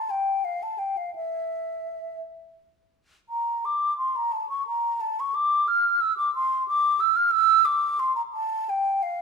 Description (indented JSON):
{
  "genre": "classical, baroque-style fantasia for unaccompanied flute",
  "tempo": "55-61 BPM (dotted quarters)",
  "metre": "6/8",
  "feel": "rubato",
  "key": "D minor from 3.3 s",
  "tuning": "A4 = 440 Hz",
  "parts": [
    { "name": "mellow hollow concert flute", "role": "solo", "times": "0.0-9.2 s", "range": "E5 to F6", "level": "-22 LUFS", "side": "right 1 dB", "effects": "none" }
  ],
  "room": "wet stone room reverb, RT60 1.2 s",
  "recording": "minimal, uncompressed stereo recording",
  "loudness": "-22 LUFS",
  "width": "side -5 dB against mid",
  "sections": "0.0-9.2 A section",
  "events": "none",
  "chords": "none"
}